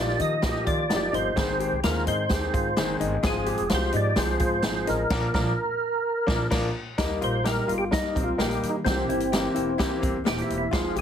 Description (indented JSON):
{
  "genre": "uptempo 1960s-style soul",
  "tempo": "128 BPM",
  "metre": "4/4",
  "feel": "straight",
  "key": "Eb major",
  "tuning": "A4 = 440 Hz",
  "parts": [
    { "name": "percussive tonewheel organ", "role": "melody", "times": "0.0-11.0 s", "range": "C4 to Eb5", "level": "-28 LUFS", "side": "right 1 dB", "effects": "overdrive, chorus vibrato, slow rotary speaker, plate reverb" },
    { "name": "clear baby grand piano", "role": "accompaniment", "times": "0.0-11.0 s", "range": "Eb3 to Bb4", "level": "-29 LUFS", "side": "equal", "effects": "none" },
    { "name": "vintage hollow-body jazz guitar", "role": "riff", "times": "0.0-11.0 s", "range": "Bb3 to Ab4", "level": "-31 LUFS", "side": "left 6 dB", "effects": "none" },
    { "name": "upright bass", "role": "bass", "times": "0.0-11.0 s", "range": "Eb1 to Eb3", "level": "-31 LUFS", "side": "equal", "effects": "none" },
    { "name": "swinging big-band drum kit", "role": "drums", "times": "0.1-11.0 s", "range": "crash cymbal, hi-hat, kick drum, snare drum", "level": "-28 LUFS", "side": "equal", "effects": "none" }
  ],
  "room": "moderate small room reverb, RT60 0.5 s",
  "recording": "heavily compressed radio sound, multiband compression",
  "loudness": "-23 LUFS",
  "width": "side -8 dB against mid",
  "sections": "0.0-7.0 A section; 7.0-11.0 B section",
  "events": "band accent 5.1-7.0; tonewheel organ solo 7.0-11.0",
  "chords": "0.0 Ebadd9; 1.4 Ab; 3.2 Fm; 5.1 Bb; 7.0 Eb; 8.9 C7"
}